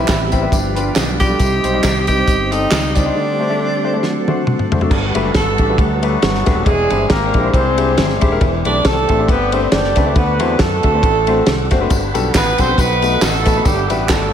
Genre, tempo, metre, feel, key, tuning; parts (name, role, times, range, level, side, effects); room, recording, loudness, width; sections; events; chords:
uptempo gospel; 137 BPM; 4/4; swing 55% on 8ths; G major; A4 = 439 Hz
breathy tenor saxophone; melody; 0.0-4.3 s; D4 to G4; -20 LUFS; right 1 dB; slapback echo
clear concert grand piano; accompaniment; 0.0-14.3 s; G2 to D5; -21 LUFS; left 4 dB; slapback echo
accordion; sustained chords; 0.0-4.9 s; G4 to G5; -29 LUFS; right 3 dB
mellow tonewheel organ; sustained chords; 0.0-14.3 s; D3 to D6; -24 LUFS; right 2 dB; fast rotary speaker, chorus vibrato
fingered electric bass; bass; 0.0-14.3 s; Eb1 to F#2; -20 LUFS; equal
warm soul drum kit; drums; 0.1-14.2 s; crash cymbal, hi-hat, kick drum, ride cymbal, snare drum, toms; -18 LUFS; equal
handclaps and tambourine; percussion; 0.1-3.1, 11.9-14.2 s; -24 LUFS; right 2 dB
warm horn section; melody; 5.4-14.3 s; F#3 to D5; -17 LUFS; right 1 dB; slapback echo
moderate scoring stage reverb, RT60 1.9 s, small room ambience; big arena sound; -13 LUFS; side -9 dB against mid
0.0-4.9 A section; 4.9-14.3 B section
break 3.2-4.9; drum fill 4.0-4.9
0.0 Cmaj7; 0.5 G7; 1.4 Cm; 3.2 D7sus4; 4.0 D7; 4.9 Gmaj9; 6.7 E7alt; 8.4 Am11/E; 10.2 D7; 11.9 Gmaj9; 12.8 B7; 13.7 Em9/G